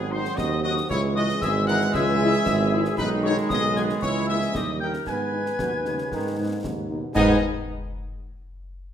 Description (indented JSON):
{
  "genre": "military-style march for wind band",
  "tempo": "115 BPM",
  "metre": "2/4",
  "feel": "straight",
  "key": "G# minor",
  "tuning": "A4 = 440 Hz",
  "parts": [
    { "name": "mellow trumpet section", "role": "melody", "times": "0.0-7.4 s", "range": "G#4 to G#5", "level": "-30 LUFS", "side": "right 1 dB", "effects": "none" },
    { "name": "mellow woodwind section", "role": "second line", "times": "0.0-7.4 s", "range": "B3 to B4", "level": "-31 LUFS", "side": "left 3 dB", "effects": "none" },
    { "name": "piccolo", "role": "second line", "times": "0.0-7.4 s", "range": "D#5 to G#6", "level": "-31 LUFS", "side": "left 5 dB", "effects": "none" },
    { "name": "warm trombone section", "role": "sustained chords", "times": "0.0-7.4 s", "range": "G#2 to B#3", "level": "-28 LUFS", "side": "right 2 dB", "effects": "none" },
    { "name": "mellow tuba", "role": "bass", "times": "0.0-7.4 s", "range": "G#1 to G#2", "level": "-26 LUFS", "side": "right 3 dB", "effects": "none" },
    { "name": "mellow French horn section", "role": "accompaniment", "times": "0.1-7.4 s", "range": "E3 to E4", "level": "-30 LUFS", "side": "left 5 dB", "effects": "none" },
    { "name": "concert snare drum, concert bass drum and clash cymbals", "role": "drums", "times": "0.2-7.4 s", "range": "none", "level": "-34 LUFS", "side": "left 1 dB", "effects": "none" }
  ],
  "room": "wet recital hall reverb, RT60 1.4 s",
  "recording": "none",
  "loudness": "-21 LUFS",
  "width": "side -9 dB against mid",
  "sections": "0.0-7.2 A section; 7.2-8.2 B section",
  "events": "none",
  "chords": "0.0 G#7; 0.9 C#m; 3.0 G#m/B; 4.0 A#m7b5/C#; 4.5 D#; 5.1 G#m",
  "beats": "0.38 | 0.90 1.42 | 1.94 2.46 | 2.98 3.50 | 4.03 4.55 | 5.07 5.59 | 6.11 6.63 | 7.15"
}